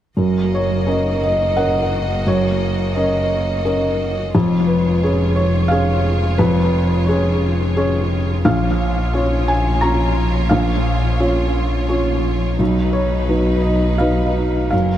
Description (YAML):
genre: neoclassical piano and strings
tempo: 87 BPM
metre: 3/4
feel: rubato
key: F# major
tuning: A4 = 439 Hz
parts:
  - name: felt-muted upright piano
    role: accompaniment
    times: 0.2-15.0 s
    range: A#1 to A#5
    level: -17 LUFS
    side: equal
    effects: tape echo
  - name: bright studio string section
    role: sustained chords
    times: 0.2-15.0 s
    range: E#3 to D#5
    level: -28 LUFS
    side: right 2 dB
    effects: none
  - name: rich double bass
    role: bass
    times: 0.2-15.0 s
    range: E#1 to B1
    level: -21 LUFS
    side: equal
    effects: none
room: moderate echo chamber reverb, RT60 2.3 s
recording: echo-heavy mix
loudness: -15 LUFS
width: side -11 dB against mid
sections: 0.2-15.0 A section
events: none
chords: 0.2 F#6; 4.3 C#/E#; 8.5 A#m; 12.6 B